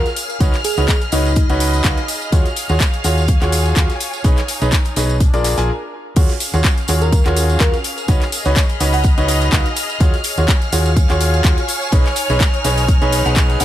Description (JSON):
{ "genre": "piano house", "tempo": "125 BPM", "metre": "4/4", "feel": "swing 55% on 16ths", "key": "Eb minor", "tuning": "A4 = 443 Hz", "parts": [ { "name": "bell-like FM electric piano", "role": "melody", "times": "0.0-1.8, 7.0-9.8 s", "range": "Eb4 to Gb5", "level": "-24 LUFS", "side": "right 1 dB", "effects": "chorus, digital delay" }, { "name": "string machine, violins", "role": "sustained chords", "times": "0.0-13.6 s", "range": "F6", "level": "-27 LUFS", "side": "left 1 dB", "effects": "ensemble chorus, sidechain pumping" }, { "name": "clear grand piano", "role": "riff", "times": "0.0-13.6 s", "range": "Eb4 to Ab5", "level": "-22 LUFS", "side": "right 1 dB", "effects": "vintage 12-bit sampler grit, sidechain pumping, low-pass filter, digital delay" }, { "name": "rich symphonic string section", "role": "texture", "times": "0.0-13.6 s", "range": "Db4 to Cb6", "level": "-26 LUFS", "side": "equal", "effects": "sidechain pumping" }, { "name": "house drum kit", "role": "drums", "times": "0.1-13.6 s", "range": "crash cymbal, handclaps, hi-hat", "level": "-23 LUFS", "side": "left 2 dB", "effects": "overdrive, small room ambience" }, { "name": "modern studio drum kit", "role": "drums", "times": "0.1-13.6 s", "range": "hi-hat, snare drum", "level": "-32 LUFS", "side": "left 4 dB", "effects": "none" }, { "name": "tambourine", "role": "percussion", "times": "0.1-13.6 s", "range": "none", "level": "-28 LUFS", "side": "right 6 dB", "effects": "none" }, { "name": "hollow-body short-scale fingered electric bass", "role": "bass", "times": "0.4-13.6 s", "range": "Bb1 to Eb2", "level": "-18 LUFS", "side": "equal", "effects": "sidechain pumping" }, { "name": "electronic kick drum", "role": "drums", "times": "0.4-13.5 s", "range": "none", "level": "-15 LUFS", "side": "equal", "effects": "small room ambience" } ], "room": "small room ambience", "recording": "none", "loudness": "-13 LUFS", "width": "side -13 dB against mid", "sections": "0.0-6.2 A section; 6.2-13.6 B section", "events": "break 5.7-6.2; drop 6.2-13.6", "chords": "0.4 Db9sus4; 2.3 Ebm11; 4.2 B69; 5.2 Bb7; 6.2 Ebm11; 8.1 Db9sus4; 10.0 Ebm11; 11.9 B69", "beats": "| 0.41 0.89 1.36 1.84 | 2.33 2.81 3.29 3.77 | 4.25 4.72 5.21 5.68 | 6.17 6.64 7.12 7.61 | 8.09 8.56 9.04 9.53 | 10.01 10.48 10.96 11.45 | 11.93 12.40 12.88 13.37" }